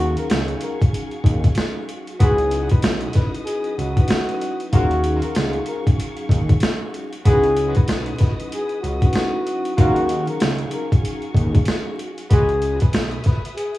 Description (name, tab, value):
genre	hip hop, boom-bap hip-hop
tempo	95 BPM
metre	4/4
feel	swing 60% on 16ths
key	Eb minor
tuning	A4 = 440 Hz
part	trumpet with bucket mute	melody	0.0-13.8 s	Gb4 to Cb5	-23 LUFS	left 1 dB	high-pass filter, low-pass filter, digital delay
part	vibraphone with soft mallets	accompaniment	0.0-12.1 s	Gb3 to F5	-29 LUFS	left 1 dB	cassette tape, high-pass filter, low-pass filter
part	warm studio string section	sustained chords	0.0-13.8 s	Gb4 to Eb6	-36 LUFS	equal	high-pass filter, low-pass filter
part	mellow horn section	stabs	0.0-12.5 s	Gb3 to F5	-33 LUFS	equal	high-pass filter, low-pass filter, digital delay
part	fat analog bass	bass	0.0-13.2 s	Cb2 to Eb2	-22 LUFS	right 1 dB	none
part	boom bap sampler-style drum kit	drums	0.2-13.8 s	hi-hat, kick drum, snare drum	-18 LUFS	equal	none
room	studio reverb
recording	rough home demo mix, vinyl crackle, small room ambience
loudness	-17 LUFS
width	side -16 dB against mid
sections	0.0-13.8 A section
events	none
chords	0.0 Ebm11; 2.2 Dbm11; 4.7 Ebm11; 7.3 Dbm11; 9.8 Ebm11; 12.3 Dbm11